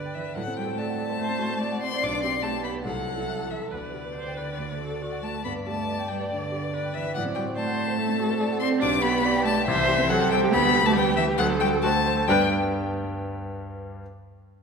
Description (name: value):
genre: quick classical-period movement for piano quartet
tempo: 140 BPM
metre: 4/4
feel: rubato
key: G major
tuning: A4 = 440 Hz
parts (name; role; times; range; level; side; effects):
- rich violin; melody; 0.0-12.5 s; D5 to D6; -27 LUFS; left 7 dB; none
- dark cello; second line; 0.0-12.5 s; D3 to D4; -28 LUFS; right 4 dB; none
- dark concert grand piano; accompaniment; 0.0-14.0 s; B1 to A5; -29 LUFS; equal; none
- warm viola; accompaniment; 0.0-12.5 s; F#4 to D5; -30 LUFS; right 2 dB; none
room: wet concert hall reverb, RT60 2.3 s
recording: recorded in a church or concert hall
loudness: -22 LUFS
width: side -5 dB against mid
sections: 0.0-12.3 A section; 12.3-14.0 B section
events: none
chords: 0.4 D7/A; 2.0 G/B; 2.9 Am/C; 3.7 G/D; 4.6 D; 5.5 G; 7.2 D7/A; 8.8 G/B; 9.7 C; 10.5 G/D; 11.4 D7; 12.3 G